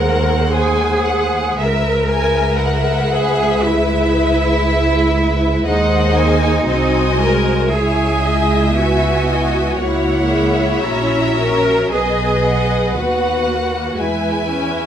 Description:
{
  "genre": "classical, slow romantic movement for string orchestra",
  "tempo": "58 BPM",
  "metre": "4/4",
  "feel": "rubato",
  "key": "unclear",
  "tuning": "A4 = 440 Hz",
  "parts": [
    { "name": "rich studio violin section", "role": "melody", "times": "0.0-14.9 s", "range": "B#4 to G#5", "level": "-24 LUFS", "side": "left 2 dB", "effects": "none" },
    { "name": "rich studio violin section", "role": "second line", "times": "0.0-14.9 s", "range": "B4 to A#5", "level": "-22 LUFS", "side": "left 3 dB", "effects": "none" },
    { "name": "rich studio viola section", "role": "accompaniment", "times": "0.0-14.9 s", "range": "G#3 to B4", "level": "-21 LUFS", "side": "left 1 dB", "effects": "none" },
    { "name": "bright studio double bass section", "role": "bass", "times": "0.0-14.9 s", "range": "A#1 to E2", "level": "-19 LUFS", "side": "right 2 dB", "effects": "none" },
    { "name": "rich studio cello section", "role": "bass", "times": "0.0-14.9 s", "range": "D#4 to A#4", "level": "-19 LUFS", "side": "right 1 dB", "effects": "none" }
  ],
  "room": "moderate recital hall reverb, RT60 1.5 s",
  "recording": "none",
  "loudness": "-14 LUFS",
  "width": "side -9 dB against mid",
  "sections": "0.0-14.9 A section",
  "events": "none",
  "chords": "0.0 G#7/D#; 1.6 C#m7; 5.6 G#7/D#; 7.7 C#m; 9.8 F#7/C#; 11.9 B; 14.0 E",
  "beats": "0.53 | 1.58 2.59 3.62 4.63 | 5.64 6.66 7.69 8.74 | 9.78 10.83 11.91 12.96 | 13.97"
}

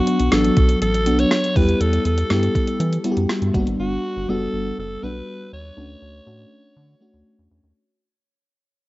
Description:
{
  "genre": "1980s-style pop",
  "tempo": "121 BPM",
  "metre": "4/4",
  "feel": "straight",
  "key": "unclear",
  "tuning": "A4 = 440 Hz",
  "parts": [
    { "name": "raspy alto saxophone", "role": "melody", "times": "0.0-7.5 s", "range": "F#4 to C#5", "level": "-25 LUFS", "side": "equal", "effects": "cassette tape, analog delay" },
    { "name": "FM electric piano with soft pad layer", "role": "accompaniment", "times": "0.0-7.8 s", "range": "F#3 to G4", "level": "-21 LUFS", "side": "left 1 dB", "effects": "chorus, tremolo, cassette tape" },
    { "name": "gated 80s digital drum machine", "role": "drums", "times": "0.1-3.8 s", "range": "hi-hat, kick drum, rim click", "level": "-22 LUFS", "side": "equal", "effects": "overdrive" },
    { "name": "rubbery square bass", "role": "bass", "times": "0.2-7.7 s", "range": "F#1 to E3", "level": "-22 LUFS", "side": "equal", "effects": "none" }
  ],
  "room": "light reverb, digital ambience",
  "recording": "home recording on cassette, nothing above 7.8 kHz",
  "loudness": "-17 LUFS",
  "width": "side -18 dB against mid",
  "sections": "0.0-7.8 A section",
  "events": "fade-out 0.0-7.8",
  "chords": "0.0 Bm; 1.6 Em; 3.5 Gmaj7; 5.8 Dmaj7",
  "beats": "0.32 0.81 1.31 | 1.81 2.30 2.80 3.29 | 3.79 4.29 4.78 5.28 | 5.77 6.27 6.76 7.26"
}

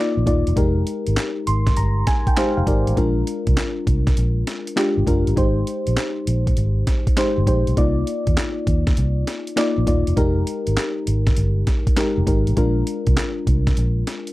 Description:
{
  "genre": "R&B, new jack swing",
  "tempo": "100 BPM",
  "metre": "4/4",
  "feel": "swing 67% on 16ths",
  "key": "unclear",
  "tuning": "A4 = 440 Hz",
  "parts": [
    { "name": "mellow FM electric piano", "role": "accompaniment", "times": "0.0-14.3 s", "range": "Ab3 to C6", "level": "-22 LUFS", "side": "left 1 dB", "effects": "chorus" },
    { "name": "vintage muted fingered electric bass", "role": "bass", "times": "0.2-14.0 s", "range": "Eb1 to Eb2", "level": "-20 LUFS", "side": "equal", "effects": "none" },
    { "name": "breakbeat sampler-style drum kit", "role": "drums", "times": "0.3-14.3 s", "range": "handclaps, hi-hat, kick drum, snare drum", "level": "-21 LUFS", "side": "equal", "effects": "none" }
  ],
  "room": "light reverb",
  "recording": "dark, warm production",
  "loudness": "-17 LUFS",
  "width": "side -18 dB against mid",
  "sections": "0.0-14.3 A section",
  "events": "FM electric piano fill 1.2-3.0",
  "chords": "0.0 Cm11 (rootless); 0.6 Fm11; 3.0 Bb7; 5.4 Abmaj7; 7.8 Cm11; 10.2 Fm11; 12.6 Bb7",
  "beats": "| 0.57 1.17 1.77 2.37 | 2.97 3.57 4.17 4.77 | 5.37 5.97 6.57 7.17 | 7.77 8.37 8.97 9.57 | 10.17 10.77 11.37 11.97 | 12.57 13.17 13.77"
}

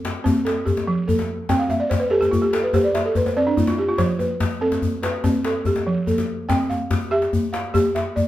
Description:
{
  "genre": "west african traditional, West African string and xylophone music",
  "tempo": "96 BPM (dotted quarters)",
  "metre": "12/8",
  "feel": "straight",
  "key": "F lydian",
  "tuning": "A4 = 443 Hz",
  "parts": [
    { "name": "balafon", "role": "arpeggios", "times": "0.0-8.3 s", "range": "F3 to G5", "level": "-20 LUFS", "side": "right 1 dB", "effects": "none" },
    { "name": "djembe", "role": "percussion", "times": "0.0-8.3 s", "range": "none", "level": "-22 LUFS", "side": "left 3 dB", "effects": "none" }
  ],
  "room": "moderate small room reverb, RT60 0.5 s",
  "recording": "none",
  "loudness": "-18 LUFS",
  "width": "side -14 dB against mid",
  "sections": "0.0-8.3 A section",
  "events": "balafon fill 1.5-4.0",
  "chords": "0.0 F; 1.5 C5; 4.0 F; 6.5 C",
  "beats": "0.24 0.87 | 1.49 2.12 2.74 3.37 | 3.99 4.62 5.24 5.87 | 6.49 7.12 7.75"
}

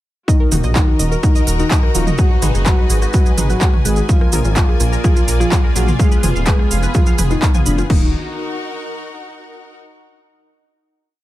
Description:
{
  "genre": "melodic techno",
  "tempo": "126 BPM",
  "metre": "4/4",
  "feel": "straight",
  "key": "Eb harmonic minor",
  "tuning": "A4 = 440 Hz",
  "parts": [
    { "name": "soft octave-layered synth lead", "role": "melody", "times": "0.3-8.1 s", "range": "D4 to Ab4", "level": "-24 LUFS", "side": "left 2 dB", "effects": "chorus, sidechain pumping, digital delay" },
    { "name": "glassy wavetable pluck", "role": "second line", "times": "0.3-8.1 s", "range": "D3 to Ab3", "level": "-27 LUFS", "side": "right 1 dB", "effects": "none" },
    { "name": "sweeping resonant pad", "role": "sustained chords", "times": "0.3-8.1 s", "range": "Ab3 to Bb5", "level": "-28 LUFS", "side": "right 1 dB", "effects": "chorus, sidechain pumping" },
    { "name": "tight sequenced synth", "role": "arpeggios", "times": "0.3-8.1 s", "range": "Eb4 to Cb6", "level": "-28 LUFS", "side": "equal", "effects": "chorus, phaser, cassette tape, sidechain pumping, tape echo" },
    { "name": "electronic kick drum", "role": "drums", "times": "0.3-8.0 s", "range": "none", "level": "-14 LUFS", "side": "equal", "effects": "overdrive" },
    { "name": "cabasa", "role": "percussion", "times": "0.3-7.9 s", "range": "none", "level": "-27 LUFS", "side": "right 5 dB", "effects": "none" },
    { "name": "clear symphonic string section", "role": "texture", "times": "0.3-9.8 s", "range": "Eb4 to Bb5", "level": "-28 LUFS", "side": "left 2 dB", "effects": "sidechain pumping" },
    { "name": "synth brass stab", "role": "stabs", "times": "0.5-8.1 s", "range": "Eb3 to Bb4", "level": "-29 LUFS", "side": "left 2 dB", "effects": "chorus, cassette tape, sidechain pumping, tape echo" },
    { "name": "dark detuned saw bass", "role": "bass", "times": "0.5-8.1 s", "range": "Eb1 to Bb1", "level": "-18 LUFS", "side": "equal", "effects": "sidechain pumping" },
    { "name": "techno drum kit", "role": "drums", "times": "0.5-8.0 s", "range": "crash cymbal, handclaps, hi-hat, rim click, toms", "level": "-22 LUFS", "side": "equal", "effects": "overdrive, sidechain pumping on hats, sidechain pumping on toms, sidechain pumping on cymbals" }
  ],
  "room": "digital ambience",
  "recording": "none",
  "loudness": "-12 LUFS",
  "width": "side -15 dB against mid",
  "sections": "0.3-7.9 drop; 7.9-9.8 final chord",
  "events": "drop 0.3-7.9",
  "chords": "0.3 Ebm; 2.2 Abm7; 4.1 Bb7; 6.0 Fdim; 7.9 Ebm",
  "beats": "| 0.28 0.76 1.23 1.71 | 2.19 2.66 3.14 3.61 | 4.09 4.57 5.04 5.52 | 5.99 6.47 6.95 7.42 | 7.90 8.38 8.85 9.33"
}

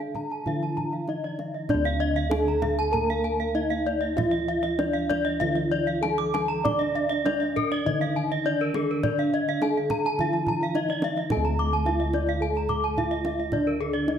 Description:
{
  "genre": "Balinese gamelan",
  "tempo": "97-109 BPM",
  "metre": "4/4",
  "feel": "straight",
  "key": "D pelog",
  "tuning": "A4 = 440 Hz",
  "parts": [
    { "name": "gamelan-type bronze metallophone", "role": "melody", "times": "0.0-14.2 s", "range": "D4 to D5", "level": "-28 LUFS", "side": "right 1 dB", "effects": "none" },
    { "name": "gamelan-type bronze metallophone", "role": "accompaniment", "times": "0.0-14.2 s", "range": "D3 to D4", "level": "-35 LUFS", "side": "right 1 dB", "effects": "none" },
    { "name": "gamelan-type bronze metallophone", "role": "arpeggios", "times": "0.0-14.1 s", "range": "Bb4-40c to D6", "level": "-31 LUFS", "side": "right 6 dB", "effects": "none" },
    { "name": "gamelan-type bossed gongs", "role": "bass", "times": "0.0-14.2 s", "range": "D2 to D5", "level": "-30 LUFS", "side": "equal", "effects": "none" },
    { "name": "kendang", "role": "percussion", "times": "0.0-14.2 s", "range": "none", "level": "-34 LUFS", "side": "right 2 dB", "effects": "none" },
    { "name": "gamelan-type bronze metallophone", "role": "arpeggios", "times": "0.2-14.2 s", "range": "A4-45c to D6", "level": "-29 LUFS", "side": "left 7 dB", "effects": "none" }
  ],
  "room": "moderate scoring stage reverb, RT60 1.9 s",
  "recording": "none",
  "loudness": "-23 LUFS",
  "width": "side -8 dB against mid",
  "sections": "0.0-11.3 A section; 11.3-14.2 B section",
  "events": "none",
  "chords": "none",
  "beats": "0.46 1.08 | 1.70 2.32 2.93 3.55 | 4.17 4.79 5.41 6.03 | 6.64 7.26 7.86 8.46 | 9.05 9.63 10.20 10.76 | 11.32 11.87 12.42 12.98 | 13.53 14.08"
}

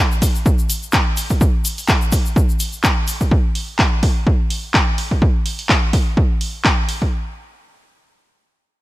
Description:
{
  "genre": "acid house",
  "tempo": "126 BPM",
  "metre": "4/4",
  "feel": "swing 56% on 16ths",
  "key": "none",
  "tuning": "none",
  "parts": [
    { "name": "egg shaker", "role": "percussion", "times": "0.1-3.3 s", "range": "none", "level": "-26 LUFS", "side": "left 6 dB", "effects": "none" },
    { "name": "electronic kick drum", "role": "drums", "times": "0.2-7.1 s", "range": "none", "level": "-16 LUFS", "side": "equal", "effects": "none" },
    { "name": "punchy analog drum machine", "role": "drums", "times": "0.2-7.0 s", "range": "handclaps, hi-hat", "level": "-21 LUFS", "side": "equal", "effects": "none" }
  ],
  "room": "little or no reverb",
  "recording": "bright 1980s-style digital production",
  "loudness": "-15 LUFS",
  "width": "side -17 dB against mid",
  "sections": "0.0-7.1 A section",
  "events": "none",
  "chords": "none",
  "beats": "0.46 0.93 | 1.41 1.89 2.36 2.84 | 3.31 3.79 4.27 4.74 | 5.22 5.70 6.17 6.65"
}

